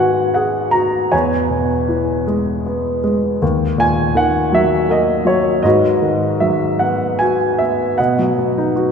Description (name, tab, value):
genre	classical, lyrical solo piano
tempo	52 BPM (dotted quarters)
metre	6/8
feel	rubato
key	G# minor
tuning	A4 = 440 Hz
part	warm baby grand piano	solo	0.0-8.9 s	D#2 to A#5	-14 LUFS	equal	none
room	wet church reverb, RT60 3.6 s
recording	recorded in a church or concert hall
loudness	-14 LUFS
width	side -6 dB against mid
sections	0.0-8.0 A section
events	none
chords	0.0 G#m7; 1.1 E6; 3.4 D#m; 5.6 G#m7; 8.0 B